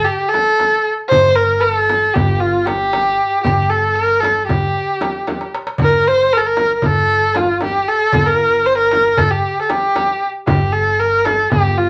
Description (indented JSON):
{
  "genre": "Turkish makam ensemble",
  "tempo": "231 BPM (eighths)",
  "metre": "9/8",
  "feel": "straight",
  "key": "G makam ussak",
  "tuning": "A4 = 440 Hz",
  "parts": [
    { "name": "rich kamancheh", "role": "melody", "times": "0.0-11.9 s", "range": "F4 to C5", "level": "-16 LUFS", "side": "equal", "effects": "none" },
    { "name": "upright bass", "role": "bass", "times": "0.0-11.9 s", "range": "G1 to G2", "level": "-25 LUFS", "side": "equal", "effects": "none" },
    { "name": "darbuka", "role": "percussion", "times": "0.1-11.8 s", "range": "none", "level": "-25 LUFS", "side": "equal", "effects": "none" },
    { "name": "frame drum", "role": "percussion", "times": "0.3-11.6 s", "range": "none", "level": "-26 LUFS", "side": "equal", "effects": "none" }
  ],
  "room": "wet studio reverb, RT60 0.5 s",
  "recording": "none",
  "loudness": "-15 LUFS",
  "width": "mono",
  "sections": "0.0-11.9 A section",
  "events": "drum fill 5.3-5.8",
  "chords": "none"
}